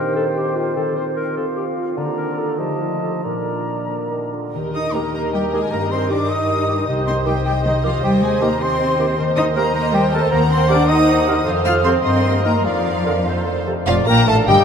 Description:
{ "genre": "classical, dramatic, fast romantic movement for symphony orchestra", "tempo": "90-106 BPM (dotted quarters)", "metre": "6/8", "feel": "rubato", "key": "Bb major, Eb major from 4.5 s, Bb major from 9.2 s", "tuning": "A4 = 441 Hz", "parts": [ { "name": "mellow clarinet", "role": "second line", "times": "0.0-14.6 s", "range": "F4 to C5", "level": "-27 LUFS", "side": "left 2 dB", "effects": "none" }, { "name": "mellow cor anglais", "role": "second line", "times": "0.0-14.6 s", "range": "Eb4 to F5", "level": "-27 LUFS", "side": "right 4 dB", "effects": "none" }, { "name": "silver concert flute", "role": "second line", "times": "0.0-14.6 s", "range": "D5 to F6", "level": "-26 LUFS", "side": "left 3 dB", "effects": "none" }, { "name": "mellow bassoon", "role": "accompaniment", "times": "0.0-14.6 s", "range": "Bb2 to Bb3", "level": "-28 LUFS", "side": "right 5 dB", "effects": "none" }, { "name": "mellow French horn section", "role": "sustained chords", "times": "0.0-14.6 s", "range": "F3 to Eb5", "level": "-25 LUFS", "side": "right 2 dB", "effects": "stereo widening" }, { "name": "concert harp", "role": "arpeggios", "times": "0.0-14.6 s", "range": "F2 to Eb5", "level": "-25 LUFS", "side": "left 3 dB", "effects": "none" }, { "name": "warm symphonic violin section", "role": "melody", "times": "4.5-14.6 s", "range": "Eb5 to Bb5", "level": "-25 LUFS", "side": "left 1 dB", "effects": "none" }, { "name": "rich symphonic viola section", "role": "accompaniment", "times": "4.5-14.6 s", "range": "F3 to Eb5", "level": "-27 LUFS", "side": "right 2 dB", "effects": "none" }, { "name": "rich symphonic double bass section", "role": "bass", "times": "4.5-14.6 s", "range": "F1 to G2", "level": "-23 LUFS", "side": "equal", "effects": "none" }, { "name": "rich symphonic violin section", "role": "second line", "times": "4.7-14.6 s", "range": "F4 to F6", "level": "-28 LUFS", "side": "right 1 dB", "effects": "none" }, { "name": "warm symphonic cello section", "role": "bass", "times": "4.7-14.6 s", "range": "F2 to F4", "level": "-22 LUFS", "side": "equal", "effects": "none" } ], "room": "wet cathedral reverb, RT60 6.6 s", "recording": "in a vast, echoing space", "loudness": "-16 LUFS", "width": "side -7 dB against mid", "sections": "0.0-4.5 A section; 4.5-13.9 B section", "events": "none", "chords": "0.0 Cm/Eb; 0.8 F5/Eb; 2.0 Bb/D; 2.6 F7; 3.2 Bb; 4.5 Eb; 5.7 Eb/G; 6.9 Cm; 8.0 Cm/Eb; 9.2 Cm7/Eb; 10.3 Cm7b5/Eb; 11.5 F; 12.0 Eb/G; 12.7 Bb/F; 13.3 F; 13.9 Bb/F", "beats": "0.16 | 0.76 1.36 | 1.97 2.59 | 3.24 3.90 | 4.55 5.14 | 5.72 6.30 | 6.88 7.46 | 8.04 8.61 | 9.19 9.76 | 10.32 10.89 | 11.46 12.05 | 12.65 13.26 | 13.87 14.48" }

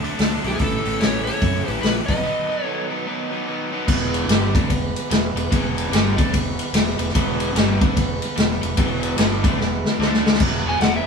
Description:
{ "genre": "blues rock power trio and southern rock", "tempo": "147 BPM", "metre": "4/4", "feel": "swing 62% on 8ths", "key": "E mixolydian", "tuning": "A4 = 440 Hz", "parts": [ { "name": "percussive tonewheel organ", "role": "sustained chords", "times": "0.0-10.4 s", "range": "E3 to B4", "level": "-32 LUFS", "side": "right 8 dB", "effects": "overdrive" }, { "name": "overdriven electric guitar", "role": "riff", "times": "0.0-11.0 s", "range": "E2 to E4", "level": "-26 LUFS", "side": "equal", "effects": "spring reverb" }, { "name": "fuzz fingered electric bass", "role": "bass", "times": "0.0-11.0 s", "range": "E1 to F#2", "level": "-25 LUFS", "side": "right 1 dB", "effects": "overdrive" }, { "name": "vintage drum kit", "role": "drums", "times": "0.0-10.9 s", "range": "crash cymbal, hi-hat, kick drum, ride cymbal, snare drum", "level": "-20 LUFS", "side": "left 1 dB", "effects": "none" }, { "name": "overdriven slide guitar", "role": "melody", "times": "0.5-2.9, 10.7-11.1 s", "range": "G4 to G#5", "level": "-25 LUFS", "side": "left 1 dB", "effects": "none" }, { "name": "lightly driven lead guitar", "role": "second line", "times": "0.5-2.9 s", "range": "E4 to B4", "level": "-33 LUFS", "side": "right 4 dB", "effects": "none" } ], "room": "moderate stone room reverb, RT60 1.0 s", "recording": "band playing live in one room", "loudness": "-18 LUFS", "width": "side -5 dB against mid", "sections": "0.0-3.9 A section; 3.9-10.4 B section", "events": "break 2.2-3.9; drum fill 9.6-10.4", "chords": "0.0 D; 0.6 A; 2.0 B; 3.9 E; 10.0 D5; 10.4 E5", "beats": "0.19 | 0.60 1.01 1.42 1.83 | 2.24 2.65 3.06 3.47 | 3.88 4.29 4.70 5.11 | 5.51 5.92 6.33 6.74 | 7.14 7.55 7.96 8.37 | 8.77 9.18 9.59 10.00 | 10.40 10.81" }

